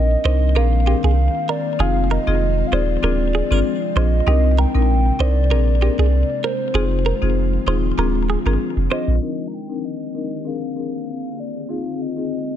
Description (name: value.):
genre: afrobeats.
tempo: 97 BPM.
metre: 4/4.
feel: swing 55% on 16ths.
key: C minor.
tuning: A4 = 440 Hz.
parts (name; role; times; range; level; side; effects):
hollow clarinet-like synth lead; melody; 0.0-12.6 s; C5 to Bb5; -26 LUFS; equal; chorus, ping-pong delay.
ethereal airy pad; sustained chords; 0.0-12.6 s; C3 to Ab4; -27 LUFS; equal; ensemble chorus, built-in reverb.
punchy sub bass; bass; 0.0-9.2 s; D1 to C2; -17 LUFS; right 1 dB; none.
marimba with medium mallets; accompaniment; 0.2-12.3 s; C4 to Bb4; -24 LUFS; left 7 dB; none.
direct-recorded clean electric guitar; riff; 0.3-9.0 s; G4 to C5; -26 LUFS; right 7 dB; phaser, ping-pong delay.
room: digital ambience.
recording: low-pass filter.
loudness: -17 LUFS.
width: side -10 dB against mid.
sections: 0.0-9.2 A section; 9.2-12.6 B section.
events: filter sweep 9.2-12.6.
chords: 0.0 Cm9; 0.6 Bb9; 1.8 Fm7; 3.0 Dm7b5; 4.3 Cm9; 5.5 Bb9; 6.7 Fm7; 8.0 Dm7b5; 9.2 Cm9; 10.5 Bb9; 11.7 Fm7.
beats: 0.56 1.18 | 1.79 2.41 3.03 3.65 | 4.27 4.89 5.50 6.12 | 6.74 7.36 7.98 8.60 | 9.22 9.83 10.45 11.07 | 11.69 12.31.